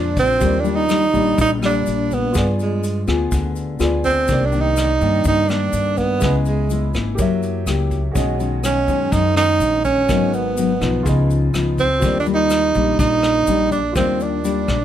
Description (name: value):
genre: bossa nova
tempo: 124 BPM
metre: 4/4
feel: straight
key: unclear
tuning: A4 = 440 Hz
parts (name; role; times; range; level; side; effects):
- warm tenor saxophone; melody; 0.0-14.8 s; Ab3 to Eb4; -18 LUFS; right 4 dB; none
- nylon-string guitar; accompaniment; 0.0-14.8 s; F#2 to Ab4; -22 LUFS; left 7 dB; none
- warm grand piano; accompaniment; 0.0-14.8 s; Fb4 to F5; -30 LUFS; right 3 dB; none
- upright bass; bass; 0.0-14.8 s; Ab1 to G2; -22 LUFS; equal; none
- vintage brush drum kit; drums; 0.2-14.8 s; hi-hat, kick drum, rim click; -26 LUFS; equal; none
- tube shaker; percussion; 0.2-14.8 s; none; -36 LUFS; left 7 dB; none
room: light reverb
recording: none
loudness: -16 LUFS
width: side -10 dB against mid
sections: 0.4-14.8 A section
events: none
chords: 0.4 Ebmaj7; 2.4 G7b9; 4.3 Cm9; 6.2 Dbm7; 7.2 Gb7b9; 8.2 B69; 10.1 Abm7; 11.1 Db9; 12.0 Ebmaj7